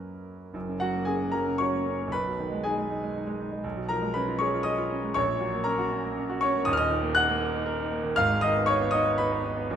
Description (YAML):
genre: classical, romantic character piece for solo piano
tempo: 118 BPM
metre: 3/4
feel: rubato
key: F# major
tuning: A4 = 439 Hz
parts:
  - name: clear grand piano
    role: solo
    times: 0.0-9.8 s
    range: Eb1 to Gb6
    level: -25 LUFS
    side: equal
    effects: none
room: wet recital hall reverb, RT60 1.6 s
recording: minimal, uncompressed stereo recording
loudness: -24 LUFS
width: side -8 dB against mid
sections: 0.5-9.8 A section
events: none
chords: 0.0 F#; 2.1 G#m/B; 3.6 C#7/B; 5.2 F#/A#; 6.7 Ebm; 8.2 Abm